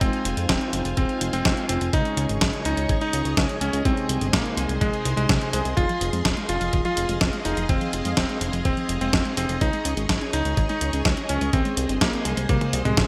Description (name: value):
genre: italo disco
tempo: 125 BPM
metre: 4/4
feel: straight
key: F minor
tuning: A4 = 441 Hz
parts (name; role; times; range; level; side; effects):
- clear electric grand piano; melody; 0.0-13.1 s; Ab3 to F4; -29 LUFS; equal; vintage 12-bit sampler grit, digital delay
- string machine, full ensemble; sustained chords; 0.0-13.1 s; F4 to Db6; -34 LUFS; equal; ensemble chorus
- mellow synth brass; stabs; 0.0-5.7 s; C3 to Ab4; -34 LUFS; equal; chorus
- fat analog bass; bass; 0.0-13.1 s; Eb1 to F2; -29 LUFS; equal; none
- clean 12-bit digital drum machine; drums; 0.0-13.1 s; hi-hat, snare drum, toms; -28 LUFS; equal; gated reverb
- electronic kick drum; drums; 0.0-13.1 s; none; -28 LUFS; equal; none
- warbly dusty pluck; arpeggios; 5.8-13.1 s; Eb3 to Eb4; -35 LUFS; equal; chorus, delay
room: moderate plate reverb, RT60 1.5 s, digital ambience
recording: bright 1980s-style digital production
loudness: -23 LUFS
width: mono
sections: 0.0-13.1 A section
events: drum fill 12.5-13.1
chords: 0.0 Fm7; 1.9 Dbsus2; 3.9 Ab; 5.8 Fm7; 9.6 Dbsus2; 11.5 Ab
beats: | 0.01 0.49 0.97 1.45 | 1.93 2.41 2.89 3.37 | 3.85 4.33 4.81 5.29 | 5.77 6.25 6.73 7.21 | 7.69 8.17 8.65 9.13 | 9.61 10.09 10.57 11.05 | 11.53 12.01 12.49 12.97